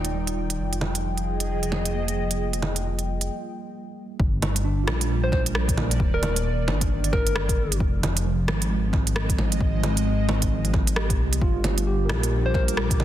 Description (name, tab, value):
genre	future garage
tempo	133 BPM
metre	4/4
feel	swing 60% on 16ths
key	F dorian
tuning	A4 = 440 Hz
part	airy breathy pad	sustained chords	0.0-13.0 s	Eb3 to D6	-31 LUFS	equal	chorus, sidechain pumping
part	dark detuned saw bass	bass	0.0-13.0 s	Eb1 to C2	-25 LUFS	equal	sidechain pumping
part	organic electronic drum kit	drums	0.0-13.0 s	bongos, hi-hat, rim click	-28 LUFS	right 2 dB	soft clipping on snare
part	tine electric piano	accompaniment	0.1-13.0 s	F3 to Bb4	-32 LUFS	right 4 dB	medium stereo tremolo, sidechain pumping, analog delay
part	electronic kick drum	drums	4.2-13.0 s	none	-25 LUFS	equal	none
part	soft struck synth lead	melody	5.2-7.8, 12.5-12.6 s	Bb4 to C5	-30 LUFS	left 2 dB	chorus, tape echo
room	little or no reverb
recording	dense, heavily limited modern master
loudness	-21 LUFS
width	side -12 dB against mid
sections	0.0-4.2 A section; 4.2-13.0 B section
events	break 3.3-4.2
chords	0.0 Ebmaj7; 0.6 Fm9; 4.2 Gm7; 6.0 Ebmaj7; 7.8 Fm9; 11.4 Gm7